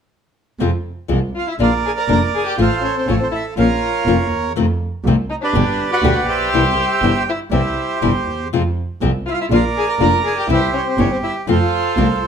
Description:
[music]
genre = tango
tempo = 122 BPM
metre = 4/4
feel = rubato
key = unclear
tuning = A4 = 440 Hz
[part]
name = nylon-string guitar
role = accompaniment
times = 0.6-12.1 s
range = B2 to G4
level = -19 LUFS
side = left 6 dB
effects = none
[part]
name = warm double bass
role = bass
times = 0.6-12.2 s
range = F1 to F2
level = -20 LUFS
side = right 2 dB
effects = none
[part]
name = warm violin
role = second line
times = 1.3-12.2 s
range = C4 to Bb4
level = -23 LUFS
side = left 4 dB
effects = none
[part]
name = bandoneon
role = melody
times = 1.4-12.3 s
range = G4 to Bb5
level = -19 LUFS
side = right 4 dB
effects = plate reverb
[sound]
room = moderate studio reverb, RT60 0.8 s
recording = dark, warm production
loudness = -15 LUFS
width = side -7 dB against mid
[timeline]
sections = 0.6-12.3 A section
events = none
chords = 0.6 Fm; 1.6 Bb; 2.6 F/A; 3.6 Bbm; 4.6 F7; 5.5 G; 6.5 C; 8.5 Fm; 9.5 Bb; 10.5 C; 11.5 F

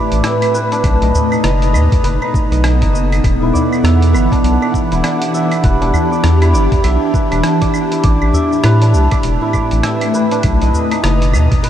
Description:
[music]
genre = organic downtempo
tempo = 100 BPM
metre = 4/4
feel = swing 60% on 16ths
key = E minor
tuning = A4 = 440 Hz
[part]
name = ethereal airy pad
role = sustained chords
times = 0.0-11.7 s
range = A2 to F#5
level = -16 LUFS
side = equal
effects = ensemble chorus, built-in reverb, phaser, sidechain pumping
[part]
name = santur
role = arpeggios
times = 0.0-11.7 s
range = D4 to E5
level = -19 LUFS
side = equal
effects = low-pass filter, diffuse ambient delay
[part]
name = round analog bass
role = bass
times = 0.1-11.5 s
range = E1 to A2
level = -13 LUFS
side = equal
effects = sidechain pumping
[part]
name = dusty soul sampler-style drum kit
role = drums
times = 0.1-11.7 s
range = claves, hi-hat, rim click, shaker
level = -24 LUFS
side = right 1 dB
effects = overdrive
[part]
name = electronic kick drum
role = drums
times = 0.8-11.6 s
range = none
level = -16 LUFS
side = equal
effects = overdrive
[part]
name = udu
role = percussion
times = 1.1-11.6 s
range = none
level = -19 LUFS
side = equal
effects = none
[sound]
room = moderate huge ambient reverb, RT60 7.1 s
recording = dreamy mix soaked in reverb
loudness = -11 LUFS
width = side -10 dB against mid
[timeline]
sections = 0.0-11.7 A section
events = none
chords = 0.0 Am7; 0.8 B7; 3.2 Em7; 8.0 Am7; 10.4 B7

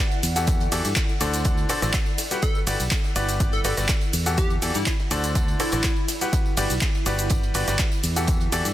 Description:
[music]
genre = piano house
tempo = 123 BPM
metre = 4/4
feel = straight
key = G major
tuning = A4 = 441 Hz
[part]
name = ethereal airy pad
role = texture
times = 0.0-8.7 s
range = E4 to F#5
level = -35 LUFS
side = right 2 dB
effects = ensemble chorus, built-in reverb, phaser, sidechain pumping
[part]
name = deep reggae drum kit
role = drums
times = 0.1-8.6 s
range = hi-hat, snare drum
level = -38 LUFS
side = right 4 dB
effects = none
[part]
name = tambourine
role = percussion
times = 0.1-8.7 s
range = none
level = -38 LUFS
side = equal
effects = none
[part]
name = modern bright fingered electric bass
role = bass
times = 0.2-8.7 s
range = G1 to G2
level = -27 LUFS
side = equal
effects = sidechain pumping
[part]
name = punchy analog drum machine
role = drums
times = 0.2-8.7 s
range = cabasa, handclaps, hi-hat, ride cymbal, rim click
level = -28 LUFS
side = equal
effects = overdrive
[part]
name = bright grand piano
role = riff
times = 0.4-8.7 s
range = D3 to F#5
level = -28 LUFS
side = left 2 dB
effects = sidechain pumping, dub echo
[part]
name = electronic kick drum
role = drums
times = 0.5-8.4 s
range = none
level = -23 LUFS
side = equal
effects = overdrive
[part]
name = plucky unison lead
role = melody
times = 2.4-6.3 s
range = E4 to A4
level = -32 LUFS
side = equal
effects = dub echo
[sound]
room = small room reverb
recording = dense, heavily limited modern master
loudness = -20 LUFS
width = side -13 dB against mid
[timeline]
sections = 0.0-8.7 A section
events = none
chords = 0.2 Em11; 1.5 D7; 2.4 Gmaj7; 4.1 Em11; 5.4 D7; 6.3 Gmaj7; 8.0 Em11

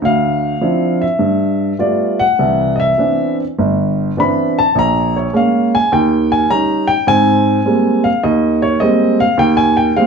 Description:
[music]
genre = solo jazz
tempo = 103 BPM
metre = 4/4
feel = swing 68% on 8ths, rubato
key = unclear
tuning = A4 = 440 Hz
[part]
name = warm upright piano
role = solo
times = 0.0-10.1 s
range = G1 to B5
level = -12 LUFS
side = equal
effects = none
[sound]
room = wet club reverb, RT60 0.7 s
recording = heard from further back in the room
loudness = -12 LUFS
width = side -5 dB against mid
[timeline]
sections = 0.0-10.1 A section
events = upright piano solo 0.0-10.1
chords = 0.0 Dm9; 1.2 G9; 2.4 Cmaj9; 4.8 Bbm7; 5.9 Eb7; 7.1 Abmaj9

